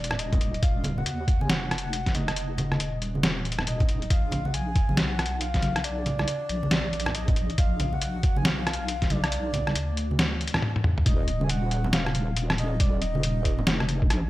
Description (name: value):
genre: deep dubstep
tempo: 138 BPM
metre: 4/4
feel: swing 62% on 16ths, half-time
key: Eb harmonic minor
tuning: A4 = 440 Hz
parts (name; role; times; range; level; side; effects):
- breathy flute-like synth lead; melody; 0.0-13.8 s; D5 to Ab5; -34 LUFS; equal; wide subtle chorus, dub echo
- wobble bass; bass; 0.0-14.3 s; Eb1 to Eb2; -30 LUFS; equal; chorus, tube saturation
- trip hop sampler-style drum kit; drums; 0.0-14.2 s; hi-hat, rim click, snare drum, toms; -27 LUFS; equal; studio reverb
- congas; percussion; 0.1-13.9 s; none; -32 LUFS; right 1 dB; none
- electronic kick drum; drums; 0.3-14.1 s; none; -24 LUFS; equal; studio reverb
room: light reverb, digital ambience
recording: dry, gritty hardware recording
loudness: -23 LUFS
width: side -16 dB against mid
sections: 0.0-11.1 A section; 11.1-14.3 B section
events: build-up 0.0-11.1; drum fill 10.6-11.1; drop 11.1-14.3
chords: 0.0 Ebm; 4.1 Bb; 11.1 Ebm